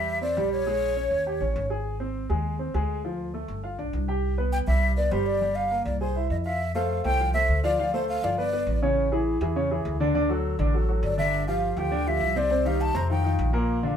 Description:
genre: Afro-Cuban jazz.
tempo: 203 BPM.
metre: 4/4.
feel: straight.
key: F major from 6.6 s.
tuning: A4 = 440 Hz.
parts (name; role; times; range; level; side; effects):
breathy mellow silver concert flute; melody; 0.0-1.7, 4.5-8.8, 11.0-13.5 s; C5 to Bb5; -27 LUFS; left 1 dB; none.
warm upright piano; accompaniment; 0.0-14.0 s; Bb2 to Ab5; -27 LUFS; equal; none.
upright bass; bass; 0.0-14.0 s; G1 to F2; -28 LUFS; equal; none.
room: wet studio reverb, RT60 0.5 s.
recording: band playing live in one room.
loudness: -23 LUFS.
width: side -8 dB against mid.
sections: 0.0-6.6 A section; 6.6-14.0 B section.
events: none.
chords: 0.0 Am7 (rootless); 0.7 Bbm7; 1.3 Eb7; 1.9 Ab; 3.0 Dm; 3.6 G7; 4.2 Cmaj7; 5.4 Gm7; 6.0 Caug; 6.6 Fmaj13; 7.8 Dm7; 8.4 Gadd9; 9.0 Amaj7; 10.1 D; 11.3 G7sus4; 12.5 Cmadd11; 13.1 Fsus2.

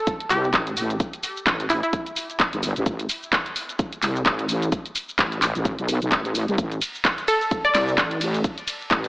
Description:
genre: bass house.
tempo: 129 BPM.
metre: 4/4.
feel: swing 57% on 16ths.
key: A minor.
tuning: A4 = 440 Hz.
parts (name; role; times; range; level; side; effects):
electronic kick drum; drums; 0.1-9.0 s; none; -26 LUFS; equal; studio reverb.
garage drum kit; drums; 0.1-9.1 s; handclaps, hi-hat, ride cymbal, shaker; -24 LUFS; equal; studio reverb.
glassy wavetable pluck; melody; 0.3-1.9, 7.3-7.8 s; E4 to D5; -24 LUFS; equal; chorus, vintage 12-bit sampler grit, dub echo.
wobble bass; bass; 0.3-9.1 s; G1 to C2; -25 LUFS; equal; chorus, tube saturation, sidechain pumping.
room: moderate lush hall reverb, RT60 2.1 s.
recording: AM radio sound.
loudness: -21 LUFS.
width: side -22 dB against mid.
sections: 0.0-9.1 A section.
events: none.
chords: none.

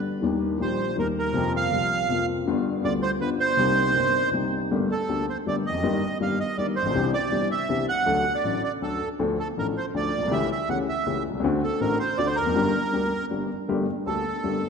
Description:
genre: tango.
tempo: 161 BPM.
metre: 3/4.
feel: rubato.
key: C minor, G minor from 4.7 s.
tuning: A4 = 441 Hz.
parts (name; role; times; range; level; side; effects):
warm upright piano; accompaniment; 0.0-14.6 s; G1 to A4; -25 LUFS; left 3 dB; none.
bandoneon; melody; 0.6-14.7 s; A4 to F#5; -26 LUFS; right 4 dB; none.
room: wet concert hall reverb, RT60 2.3 s.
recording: dark, warm production.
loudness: -22 LUFS.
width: side -6 dB against mid.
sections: 0.0-4.7 A section; 4.7-13.7 B section; 13.7-14.7 C section.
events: none.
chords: 0.2 Eb; 1.4 Fsus4; 2.5 G7; 3.6 Cm7; 4.7 Gmadd9; 5.8 Eb/G; 7.0 Cadd9; 8.1 D; 9.2 Dm; 10.3 A7/C#; 11.4 D7; 12.6 Gm; 13.7 Gmadd9.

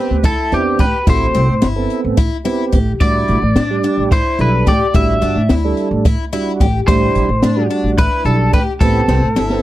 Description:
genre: progressive instrumental, band music in an uneven meter.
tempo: 217 BPM (eighths).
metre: 7/8.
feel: straight.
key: A dorian.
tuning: A4 = 439 Hz.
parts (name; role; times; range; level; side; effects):
lightly driven lead guitar; melody; 0.0-9.6 s; G4 to E5; -18 LUFS; equal; none.
mellow tonewheel organ; accompaniment; 0.0-9.6 s; G3 to A4; -19 LUFS; right 5 dB; overdrive, chorus vibrato, slow rotary speaker.
picked twelve-string acoustic guitar; arpeggios; 0.0-9.6 s; C4 to G4; -22 LUFS; left 6 dB; none.
upright bass; bass; 0.1-9.6 s; G1 to A2; -17 LUFS; equal; none.
open jazz drum kit; drums; 0.2-9.6 s; hi-hat, kick drum, snare drum; -16 LUFS; equal; none.
room: little or no reverb.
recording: dry, close 1970s-style studio recording.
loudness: -12 LUFS.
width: side -15 dB against mid.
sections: 0.0-9.6 A section.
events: drum fill 9.1-9.6.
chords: 0.0 Am7; 3.0 Em7; 8.8 Am7.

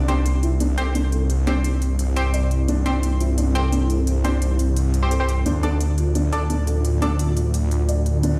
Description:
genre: dark technical drum and bass.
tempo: 173 BPM.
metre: 4/4.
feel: straight.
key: unclear.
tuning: A4 = 443 Hz.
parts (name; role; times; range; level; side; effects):
dark analog pad; sustained chords; 1.9-8.4 s; G3 to D5; -31 LUFS; equal; chorus, phaser.
snarling distorted saw bass; bass; 0.0-8.4 s; C2 to D2; -22 LUFS; equal; distortion, tube saturation.
felt-muted upright piano; arpeggios; 0.1-8.3 s; D4 to D5; -29 LUFS; equal; delay.
band-passed chord stab; stabs; 0.1-7.1 s; C4 to D5; -31 LUFS; equal; chorus, delay.
electronic hi-hat; drums; 0.1-8.3 s; none; -36 LUFS; equal; none.
room: light reverb.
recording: played on a big sound system in a bare room, large studio reverb.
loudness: -21 LUFS.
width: mono.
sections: 0.0-8.4 A section.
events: filter sweep on analog synth pad 0.0-8.4.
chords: 0.0 C; 5.5 Dm.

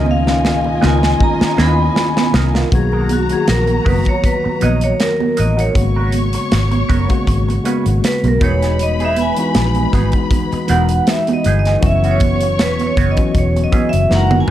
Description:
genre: lush 1970s-style soul.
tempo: 79 BPM.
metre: 4/4.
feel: swing 54% on 16ths.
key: B major.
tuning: A4 = 439 Hz.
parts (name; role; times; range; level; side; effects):
vibraphone with hard mallets; melody; 0.0-14.5 s; F#4 to B5; -19 LUFS; right 1 dB; none.
warm studio string section; second line; 0.0-14.5 s; E#4 to C#6; -25 LUFS; left 3 dB; none.
mellow tine electric piano; accompaniment; 0.0-14.5 s; C#3 to F#4; -20 LUFS; left 3 dB; overdrive, medium stereo tremolo.
chorused pulse-width pad; sustained chords; 0.0-2.7, 8.8-14.5 s; B2 to F#4; -30 LUFS; equal; none.
electric guitar through a small old amp; riff; 0.0-14.5 s; E3 to C#5; -28 LUFS; right 6 dB; wah.
vintage muted fingered electric bass; bass; 0.0-14.4 s; E1 to D#2; -17 LUFS; equal; none.
congas; percussion; 0.1-14.5 s; none; -24 LUFS; right 8 dB; none.
modern studio drum kit; drums; 0.3-14.5 s; hi-hat, kick drum, snare drum, toms; -18 LUFS; equal; none.
room: light reverb, small room ambience.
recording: dark, warm production.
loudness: -12 LUFS.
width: side -12 dB against mid.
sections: 0.0-2.7 A section; 2.7-14.5 B section.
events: drum fill 0.0-2.7, 14.1-14.5; vibraphone solo 2.7-14.5.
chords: 0.0 C#13; 2.7 Bmaj7; 5.8 G#m11; 8.4 Emaj9; 11.8 F#7sus4.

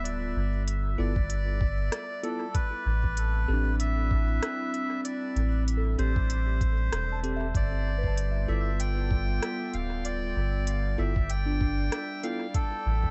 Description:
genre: ambient dub.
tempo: 96 BPM.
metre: 4/4.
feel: swing 57% on 16ths.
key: unclear.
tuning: A4 = 440 Hz.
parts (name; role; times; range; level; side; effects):
melodica; melody; 0.0-13.1 s; A4 to G5; -37 LUFS; equal; dub echo.
warbly tape-like pad; sustained chords; 0.0-13.1 s; G3 to E5; -40 LUFS; equal; chorus, built-in reverb.
soft synth bell; arpeggios; 0.0-13.1 s; D4 to E6; -42 LUFS; equal; chorus, dub echo.
soft dub sub bass; bass; 0.0-13.1 s; D1 to A1; -30 LUFS; equal; none.
organic electronic drum kit; drums; 0.1-12.7 s; hi-hat, rim click; -40 LUFS; equal; dub echo.
bell-like tine electric piano; stabs; 1.0-12.4 s; B3 to A4; -40 LUFS; equal; dub echo.
electronic kick drum; drums; 1.2-13.1 s; none; -31 LUFS; equal; none.
room: light reverb, digital ambience.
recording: nothing above 8.0 kHz.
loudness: -28 LUFS.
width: mono.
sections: 0.0-13.1 A section.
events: none.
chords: 0.0 G13; 2.5 Am7; 7.5 G13; 12.5 A7(no3).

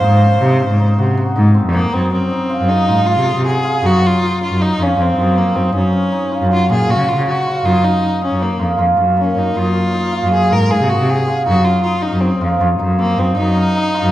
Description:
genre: contemporary instrumental, chamber music in an uneven meter.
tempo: 158 BPM.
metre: 5/4.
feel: straight.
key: unclear.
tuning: A4 = 440 Hz.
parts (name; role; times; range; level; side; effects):
rich violin; melody; 0.0-14.1 s; Bb3 to C5; -20 LUFS; left 1 dB; none.
cimbalom; arpeggios; 0.0-14.1 s; Bb3 to Ab4; -18 LUFS; right 1 dB; none.
clear cello; bass; 0.0-14.1 s; F2 to Db3; -15 LUFS; equal; none.
room: moderate recital hall reverb, RT60 1.6 s.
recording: dark, warm production.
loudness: -12 LUFS.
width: side -14 dB against mid.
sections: 0.0-1.9 A section; 1.9-14.1 B section.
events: none.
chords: 0.0 Ab; 1.9 Fm7/Gb; 3.8 Ebm13; 5.7 Gbmaj7; 9.5 Fm7/Gb; 11.5 Ab.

